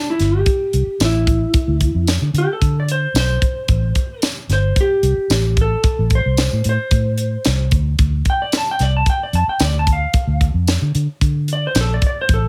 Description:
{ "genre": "straight-eighth soul blues", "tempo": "112 BPM", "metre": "4/4", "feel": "straight", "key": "A minor", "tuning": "A4 = 440 Hz", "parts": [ { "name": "clean lap steel guitar", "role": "melody", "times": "0.0-12.4 s", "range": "E4 to A5", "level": "-23 LUFS", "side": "equal", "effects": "none" }, { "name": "vintage muted fingered electric bass", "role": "bass", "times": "0.2-12.5 s", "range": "G1 to D3", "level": "-20 LUFS", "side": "equal", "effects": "none" }, { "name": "tight funk drum kit", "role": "drums", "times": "0.2-12.4 s", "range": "hi-hat, kick drum, snare drum, tambourine", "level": "-21 LUFS", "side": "equal", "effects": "none" } ], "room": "little or no reverb", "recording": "none", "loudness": "-17 LUFS", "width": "mono", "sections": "0.0-12.5 A section", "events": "electric slide guitar solo 0.0-12.5", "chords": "0.0 A7(no3); 1.5 D7(no3); 3.7 Am; 8.0 N.C.", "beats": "0.47 1.00 | 1.54 2.08 2.62 3.15 | 3.69 4.23 4.77 5.31 | 5.84 6.38 6.92 7.46 | 7.99 8.53 9.07 9.61 | 10.15 10.68 11.22 11.76 | 12.30" }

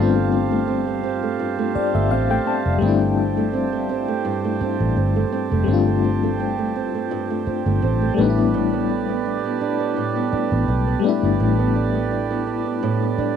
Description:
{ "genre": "contemporary R&B", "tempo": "84 BPM", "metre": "4/4", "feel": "swing 54% on 16ths", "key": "unclear", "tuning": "A4 = 441 Hz", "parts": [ { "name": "FM electric piano with tremolo", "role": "accompaniment", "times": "0.0-13.4 s", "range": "G3 to A5", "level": "-22 LUFS", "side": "left 10 dB", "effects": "cassette tape" }, { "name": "hand-pumped harmonium", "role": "sustained chords", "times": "0.0-13.4 s", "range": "G4 to A5", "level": "-27 LUFS", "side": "right 9 dB", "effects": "cassette tape" }, { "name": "nylon-string guitar", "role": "arpeggios", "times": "0.0-13.4 s", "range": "G2 to D4", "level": "-24 LUFS", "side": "right 8 dB", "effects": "cassette tape, analog delay" }, { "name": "vintage muted fingered electric bass", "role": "bass", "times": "0.0-13.2 s", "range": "F1 to B1", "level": "-23 LUFS", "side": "equal", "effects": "none" } ], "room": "light reverb", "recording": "home recording on cassette", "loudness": "-18 LUFS", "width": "side -8 dB against mid", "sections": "0.0-13.4 A section", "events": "FM electric piano fill 1.4-2.8", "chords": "0.0 G9sus4; 8.2 A9sus4", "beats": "0.68 1.39 2.11 | 2.82 3.54 4.25 4.96 | 5.68 6.39 7.11 7.82 | 8.54 9.25 9.96 10.68 | 11.39 12.11 12.82" }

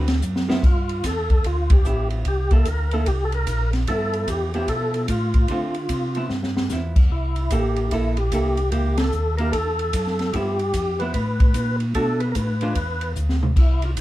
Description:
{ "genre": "soul jazz organ trio", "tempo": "148 BPM", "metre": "4/4", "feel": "swing 64% on 8ths", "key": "G mixolydian", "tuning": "A4 = 440 Hz", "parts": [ { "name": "archtop guitar, miked and amplified", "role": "accompaniment", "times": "0.0-12.8 s", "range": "D3 to A4", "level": "-28 LUFS", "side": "right 2 dB", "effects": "none" }, { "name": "mellow tonewheel organ", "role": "bass", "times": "0.0-14.0 s", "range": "A1 to D3", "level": "-24 LUFS", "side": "equal", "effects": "chorus vibrato, slow rotary speaker" }, { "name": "open jazz drum kit", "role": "drums", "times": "0.1-14.0 s", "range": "crash cymbal, hi-hat, kick drum, ride cymbal, snare drum, toms", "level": "-21 LUFS", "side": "equal", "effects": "none" }, { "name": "percussive tonewheel organ", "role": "melody", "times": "0.6-13.9 s", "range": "E4 to B4", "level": "-26 LUFS", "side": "equal", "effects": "slow rotary speaker, overdrive, chorus vibrato" } ], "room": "moderate small room reverb, RT60 0.5 s", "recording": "heard from further back in the room", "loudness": "-19 LUFS", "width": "side -15 dB against mid", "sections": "0.6-14.0 A section", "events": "drum fill 0.2-0.6, 6.3-6.7, 13.2-13.6; band accent 1.6, 8.9", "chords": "0.0 D69; 0.6 G13; 2.3 C13; 3.9 G13; 5.5 Dm7; 6.3 G6; 7.1 C6; 8.7 C#dim7; 10.3 G13; 11.9 Bm7; 12.8 E5", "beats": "0.23 | 0.64 1.04 1.44 1.85 | 2.25 2.66 3.06 3.47 | 3.87 4.28 4.68 5.09 | 5.49 5.90 6.30 6.71 | 7.11 7.51 7.92 8.32 | 8.72 9.13 9.53 9.93 | 10.34 10.74 11.14 11.55 | 11.95 12.35 12.76 13.16 | 13.56 13.97" }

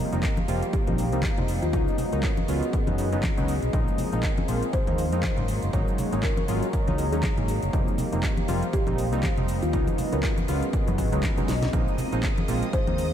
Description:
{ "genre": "deep house", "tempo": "120 BPM", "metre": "4/4", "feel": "swing 57% on 16ths", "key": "unclear", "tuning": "A4 = 439 Hz", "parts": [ { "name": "warm analog pad", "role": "sustained chords", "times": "0.0-13.1 s", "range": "Bb3 to Eb5", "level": "-35 LUFS", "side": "right 1 dB", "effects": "chorus, sidechain pumping" }, { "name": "warm analog keys", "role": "stabs", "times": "0.0-13.0 s", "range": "F3 to F4", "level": "-30 LUFS", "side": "equal", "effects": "chorus, sidechain pumping, ping-pong delay" }, { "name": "warbly tape-like pad", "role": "texture", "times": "0.0-13.1 s", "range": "Db4 to C6", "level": "-36 LUFS", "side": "left 2 dB", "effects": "chorus, built-in reverb, sidechain pumping" }, { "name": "fingered electric bass", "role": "bass", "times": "0.1-13.1 s", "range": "F1 to Gb2", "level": "-28 LUFS", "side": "equal", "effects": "sidechain pumping" }, { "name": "house drum kit", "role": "drums", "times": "0.1-13.1 s", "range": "handclaps, hi-hat, shaker, snare drum", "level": "-36 LUFS", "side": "equal", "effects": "overdrive" }, { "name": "electronic kick drum", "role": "drums", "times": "0.2-12.8 s", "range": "none", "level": "-27 LUFS", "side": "equal", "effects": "none" }, { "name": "congas", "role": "percussion", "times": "0.4-13.0 s", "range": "none", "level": "-34 LUFS", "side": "left 1 dB", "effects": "none" }, { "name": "kalimba", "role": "melody", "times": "0.7-12.9 s", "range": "F4 to C5", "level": "-34 LUFS", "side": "left 2 dB", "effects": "ping-pong delay" }, { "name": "string machine, violins", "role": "texture", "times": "11.7-13.1 s", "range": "Eb5 to Eb6", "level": "-40 LUFS", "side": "equal", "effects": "ensemble chorus, sidechain pumping" } ], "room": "moderate cathedral reverb, RT60 7.5 s", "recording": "dreamy mix soaked in reverb", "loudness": "-23 LUFS", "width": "side -10 dB against mid", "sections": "0.0-13.1 A section", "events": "drum fill 11.5", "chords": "0.0 F9sus4; 1.7 Db9sus4; 3.7 Bb9sus4; 5.5 Ab9sus4; 7.7 F9sus4; 9.7 Db9sus4; 11.7 Bb9sus4", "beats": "0.23 0.73 1.23 | 1.73 2.23 2.73 3.23 | 3.73 4.23 4.73 5.23 | 5.73 6.23 6.73 7.23 | 7.73 8.23 8.73 9.23 | 9.73 10.23 10.73 11.23 | 11.73 12.23 12.73" }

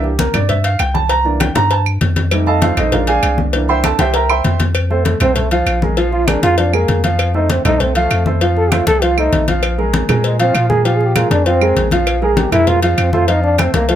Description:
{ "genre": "Afro-Cuban jazz", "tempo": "197 BPM", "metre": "4/4", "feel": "straight", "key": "F major", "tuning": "A4 = 440 Hz", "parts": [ { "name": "warm upright piano", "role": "accompaniment", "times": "0.0-14.0 s", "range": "E3 to C6", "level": "-17 LUFS", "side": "right 2 dB", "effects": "none" }, { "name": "punchy sub bass", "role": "bass", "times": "0.0-14.0 s", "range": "Bb1 to Bb2", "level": "-17 LUFS", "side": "equal", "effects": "none" }, { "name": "congas", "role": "percussion", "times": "0.0-14.0 s", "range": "none", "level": "-20 LUFS", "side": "left 2 dB", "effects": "none" }, { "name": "cowbell", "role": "percussion", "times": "0.2-14.0 s", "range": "none", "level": "-23 LUFS", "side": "left 6 dB", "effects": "none" }, { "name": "claves", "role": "percussion", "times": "0.3-13.7 s", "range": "none", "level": "-23 LUFS", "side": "right 10 dB", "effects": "none" }, { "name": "trombone with cup mute", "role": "melody", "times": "4.9-14.0 s", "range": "F3 to A4", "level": "-16 LUFS", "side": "right 1 dB", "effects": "none" } ], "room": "moderate club reverb, RT60 0.6 s", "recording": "none", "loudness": "-12 LUFS", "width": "side -10 dB against mid", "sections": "0.0-4.8 A section; 4.8-14.0 A section", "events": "upright piano solo 0.0-4.8; trombone solo 4.8-14.0", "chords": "0.0 C7; 2.3 F7; 2.9 Bb7; 3.5 C7; 4.8 F; 6.0 Bb5; 7.2 F7; 9.6 Bb5; 13.3 F", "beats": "0.19 0.49 0.80 | 1.10 1.41 1.71 2.01 | 2.32 2.62 2.93 3.23 | 3.54 3.84 4.14 4.45 | 4.75 5.06 5.36 5.67 | 5.97 6.28 6.58 6.89 | 7.19 7.50 7.80 8.11 | 8.41 8.72 9.02 9.33 | 9.63 9.94 10.24 10.55 | 10.85 11.15 11.46 11.76 | 12.07 12.37 12.68 12.98 | 13.29 13.59 13.89" }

